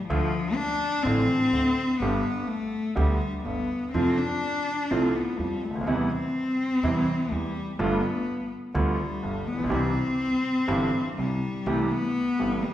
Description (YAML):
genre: tango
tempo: 125 BPM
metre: 4/4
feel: rubato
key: C major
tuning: A4 = 437 Hz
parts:
  - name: warm cello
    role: second line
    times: 0.0-12.7 s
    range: F3 to D4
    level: -26 LUFS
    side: left 2 dB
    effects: none
  - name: clear concert grand piano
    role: accompaniment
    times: 0.1-12.6 s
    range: G1 to G4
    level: -28 LUFS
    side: right 2 dB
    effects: none
  - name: upright bass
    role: bass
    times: 0.1-12.6 s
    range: G1 to F2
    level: -31 LUFS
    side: right 1 dB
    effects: none
room: wet recital hall reverb, RT60 1.6 s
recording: recorded in a church or concert hall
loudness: -24 LUFS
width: side -12 dB against mid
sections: 0.0-11.7 A section; 11.7-12.7 A section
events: cello solo 0.0-11.7, 11.7-12.7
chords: 0.1 Dm; 2.0 G; 3.9 F; 5.9 C/E; 7.8 G7; 9.7 C